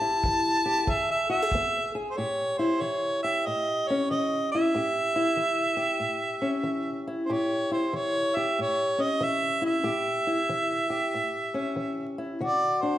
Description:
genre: acoustic country blues, solo or duo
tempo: 94 BPM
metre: 4/4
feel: swing 65% on 8ths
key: A mixolydian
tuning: A4 = 442 Hz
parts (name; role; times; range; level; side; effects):
- mellow harmonica; melody; 0.0-13.0 s; C5 to A5; -26 LUFS; right 1 dB; none
- fingerpicked old ladder-braced acoustic guitar; accompaniment; 0.0-13.0 s; A2 to G#4; -29 LUFS; left 2 dB; none
- kick drum; drums; 0.2-1.7 s; none; -31 LUFS; equal; none
room: wet recital hall reverb, RT60 1.5 s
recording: recorded in a church or concert hall, vinyl crackle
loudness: -24 LUFS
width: side -13 dB against mid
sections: 0.0-2.2 A section; 2.2-13.0 B section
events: harmonica solo 0.0-2.2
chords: 0.0 A5; 0.9 E; 2.2 A7; 12.4 D7

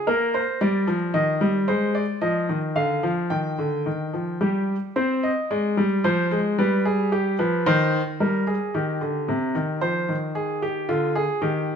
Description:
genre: classical, baroque-style two-part invention for grand piano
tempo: 111 BPM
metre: 3/4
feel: straight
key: C minor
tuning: A4 = 439 Hz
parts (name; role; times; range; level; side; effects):
- warm baby grand piano; solo; 0.0-11.8 s; C3 to G5; -21 LUFS; equal; none
room: wet stone room reverb, RT60 1.4 s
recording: minimal, uncompressed stereo recording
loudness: -21 LUFS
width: side -7 dB against mid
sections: 0.0-5.0 A section; 5.0-8.2 B section; 8.2-11.8 A section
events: none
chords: 0.1 Gm/Bb; 1.1 Eb; 1.7 Ab; 2.8 Dm; 3.3 Dmadd11; 4.4 N.C.; 5.0 Cm; 6.0 Fm; 6.6 G7; 7.7 Cm/Eb; 8.2 Eb/G; 9.3 Cm; 9.8 Fm; 10.9 Ddim

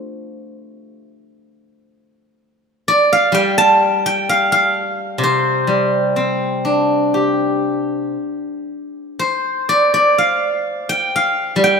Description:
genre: chinese traditional, Chinese solo plucked strings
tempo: 59-67 BPM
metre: 4/4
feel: rubato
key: C zhi mode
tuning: A4 = 440 Hz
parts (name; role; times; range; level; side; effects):
- steel-string zither; solo; 0.0-11.8 s; C3 to A5; -14 LUFS; equal; none
room: wet plate reverb, RT60 2.9 s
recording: dreamy mix soaked in reverb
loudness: -14 LUFS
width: side -5 dB against mid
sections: 0.0-9.2 A section; 9.2-11.8 B section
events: none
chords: none

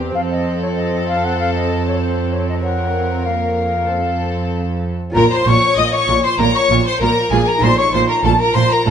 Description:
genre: classical, baroque-style concerto movement with solo episodes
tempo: 97 BPM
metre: 4/4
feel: straight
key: Bb minor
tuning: A4 = 440 Hz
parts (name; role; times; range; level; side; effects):
- warm chamber violin section; melody; 0.0-8.9 s; Bb4 to Eb6; -23 LUFS; left 3 dB; none
- rich chamber violin section; second line; 0.0-8.9 s; G4 to Eb5; -20 LUFS; left 3 dB; none
- dark studio viola section; accompaniment; 0.0-8.9 s; Bb3 to F4; -26 LUFS; right 3 dB; none
- lute; accompaniment; 0.0-8.9 s; E2 to Db5; -26 LUFS; equal; none
- warm chamber cello section; bass; 0.0-8.9 s; E2 to Bb2; -21 LUFS; right 3 dB; none
- mellow concert flute; melody; 0.1-8.9 s; C5 to Eb6; -20 LUFS; left 2 dB; none
- dark chamber double bass section; bass; 5.1-8.9 s; Bb1; -20 LUFS; right 4 dB; none
room: moderate recital hall reverb, RT60 1.5 s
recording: nothing above 10.9 kHz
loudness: -14 LUFS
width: side -8 dB against mid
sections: 0.0-5.2 A section; 5.2-8.9 B section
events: none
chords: 0.2 F; 2.6 Bbm/F; 3.9 F; 5.2 Bbm; 7.6 F7/Bb

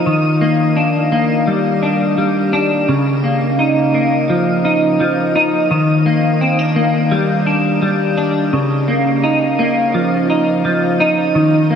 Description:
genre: dream pop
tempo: 85 BPM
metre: 4/4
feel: straight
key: unclear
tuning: A4 = 440 Hz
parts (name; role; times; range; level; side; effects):
- semi-hollow electric guitar; solo; 0.0-11.8 s; Db3 to Eb4; -12 LUFS; equal; analog chorus, ping-pong delay
room: wet shimmer reverb, RT60 7.7 s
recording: none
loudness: -13 LUFS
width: side -7 dB against mid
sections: 0.0-11.8 A section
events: none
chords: 0.1 Ebmaj7; 2.9 Db69; 5.7 Ebmaj7; 8.5 Db69

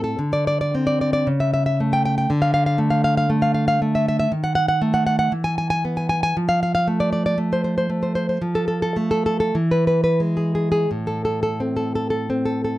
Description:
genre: romantic piece for solo classical guitar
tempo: 40-61 BPM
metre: 2/4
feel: rubato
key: A minor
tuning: A4 = 440 Hz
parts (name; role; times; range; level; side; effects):
- nylon-string guitar; solo; 0.0-12.8 s; A2 to G#5; -18 LUFS; equal; none
room: moderate studio ambience, RT60 0.5 s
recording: dry, close 1970s-style studio recording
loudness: -18 LUFS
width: side -16 dB against mid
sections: 0.0-12.8 A section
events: none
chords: 0.2 Csus2/D; 1.3 A/C#; 2.3 D5; 4.3 D#dim; 5.3 E5; 6.3 F; 9.6 E; 10.9 Am

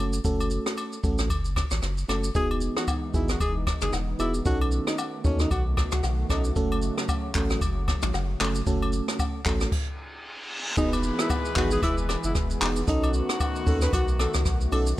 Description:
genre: afrobeats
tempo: 114 BPM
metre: 4/4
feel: swing 58% on 16ths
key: unclear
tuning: A4 = 440 Hz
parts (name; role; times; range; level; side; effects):
- FM electric piano; accompaniment; 0.0-15.0 s; A3 to A4; -30 LUFS; right 2 dB; chorus
- warm sub bass; bass; 0.0-14.9 s; E1 to D#2; -27 LUFS; equal; none
- jazz brush drum kit; drums; 0.1-15.0 s; crash cymbal, handclaps, hi-hat, kick drum, rim click, shaker, toms; -28 LUFS; equal; vintage 12-bit sampler grit
- agogo bells and woodblock; percussion; 0.4-14.9 s; none; -36 LUFS; left 4 dB; none
- warm analog pad; sustained chords; 2.3-15.0 s; C#3 to G#4; -36 LUFS; equal; chorus, sidechain pumping
- breathy alto saxophone; melody; 2.4-6.4, 10.8-14.9 s; C#4 to B4; -31 LUFS; equal; none
- reverse cymbal and downlifter; sound effects; 9.9-15.0 s; none; -36 LUFS; equal; none
- warm horn section; second line; 10.8-14.7 s; D#3 to B4; -34 LUFS; left 3 dB; none
room: little or no reverb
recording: none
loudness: -23 LUFS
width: side -15 dB against mid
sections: 0.0-2.4 A section; 2.4-10.8 B section; 10.8-15.0 C section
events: stop 9.7-10.8; reverse cymbal 9.9-10.8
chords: 0.0 F#m; 2.4 Emaj7; 4.5 B7; 6.6 F#m; 10.8 Emaj7; 12.9 B7

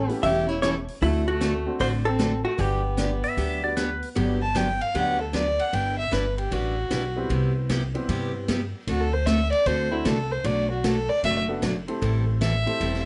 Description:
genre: country, western swing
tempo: 153 BPM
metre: 4/4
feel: swing 65% on 8ths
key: G major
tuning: A4 = 440 Hz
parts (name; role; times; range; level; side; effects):
- vintage hollow-body jazz guitar; melody; 0.0-4.0 s; E4 to E5; -29 LUFS; equal; plate reverb
- warm fiddle; second line; 0.0-13.0 s; A3 to A5; -30 LUFS; equal; none
- upright bass; bass; 0.0-13.1 s; E1 to G2; -30 LUFS; equal; none
- clear upright piano; accompaniment; 0.1-13.1 s; G3 to A4; -34 LUFS; equal; none
- vintage drum kit; drums; 0.1-13.1 s; hi-hat, kick drum, ride cymbal, snare drum; -37 LUFS; equal; none
- picked steel-string acoustic guitar; accompaniment; 0.2-13.0 s; B2 to B4; -31 LUFS; equal; none
- clean lap steel guitar; second line; 3.2-4.1 s; B4 to E5; -30 LUFS; equal; none
room: moderate club reverb, RT60 0.6 s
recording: nothing above 10.7 kHz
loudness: -25 LUFS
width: mono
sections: 0.0-4.2 A section; 4.2-13.1 B section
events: fiddle solo 4.2-13.1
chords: 0.0 A7; 1.0 D7; 2.6 Gmaj7; 5.7 Em7/G; 7.3 Cmaj7; 8.9 D7; 10.4 Bm7; 12.0 Am7

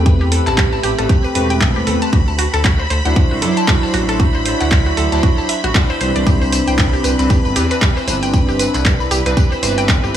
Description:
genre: deep house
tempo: 116 BPM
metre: 4/4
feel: swing 58% on 16ths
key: unclear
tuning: A4 = 440 Hz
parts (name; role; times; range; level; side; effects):
- chorused polysynth; stabs; 0.0-10.2 s; E3 to C5; -19 LUFS; equal; sidechain pumping, digital delay
- smooth gliding synth bass; bass; 0.0-10.2 s; E1 to F#2; -19 LUFS; equal; sidechain pumping
- string machine, violins; texture; 0.0-10.2 s; B5; -26 LUFS; left 2 dB; ensemble chorus
- mallet-like synth pluck; arpeggios; 0.1-10.2 s; F#4 to B5; -22 LUFS; right 1 dB; chorus, sidechain pumping, digital delay
- electronic kick drum; drums; 0.1-10.0 s; none; -14 LUFS; equal; none
- punchy analog drum machine; drums; 0.1-10.2 s; handclaps, hi-hat, tambourine; -22 LUFS; equal; none
room: digital ambience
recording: small room ambience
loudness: -13 LUFS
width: side -10 dB against mid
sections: 0.0-10.2 A section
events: none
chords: 0.0 Am9; 2.1 D9; 6.0 Cmaj9

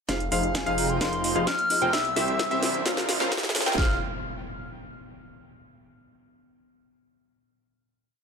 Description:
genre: EDM, festival progressive house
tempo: 130 BPM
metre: 4/4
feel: straight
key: F minor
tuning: A4 = 440 Hz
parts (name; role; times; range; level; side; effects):
- lush unison pad; sustained chords; 0.5-4.0 s; Db3 to G5; -36 LUFS; right 1 dB; chorus, phaser, sidechain pumping
- bright concert grand piano; arpeggios; 0.1-4.0 s; E5 to G5; -32 LUFS; left 1 dB; sidechain pumping, dub echo
- supersaw stab; riff; 0.1-4.0 s; Db4 to G5; -31 LUFS; right 2 dB; vintage 12-bit sampler grit, sidechain pumping, low-pass filter, dub echo
- wide detuned saw bass; bass; 0.1-4.0 s; F1 to C2; -32 LUFS; equal; chorus, sidechain pumping
- house drum kit; drums; 0.1-3.9 s; kick drum, snare drum; -28 LUFS; equal; high-pass filter on kick, high-pass filter on snare, high-pass filter on room
- house drum kit; drums; 0.1-3.8 s; hi-hat, snare drum; -28 LUFS; right 1 dB; none
- riser and impact; sound effects; 1.2-5.6 s; none; -38 LUFS; equal; none
- felt-muted upright piano; accompaniment; 0.3-4.0 s; Bb2 to F5; -34 LUFS; left 4 dB; sidechain pumping, dub echo
- hollow concert flute; melody; 0.5-4.0 s; Ab5 to F6; -29 LUFS; left 1 dB; dub echo
room: moderate digital room reverb, RT60 0.9 s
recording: high-pass filter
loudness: -22 LUFS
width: side -6 dB against mid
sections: 0.1-3.8 build; 3.8-5.6 final chord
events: build-up 0.1-3.8; drum fill 0.1-3.8; filter sweep on supersaw synth 0.1-3.8; filter sweep 0.1-3.8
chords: 0.1 Fm7; 1.9 C; 2.9 Bbmadd9; 3.8 Fm7

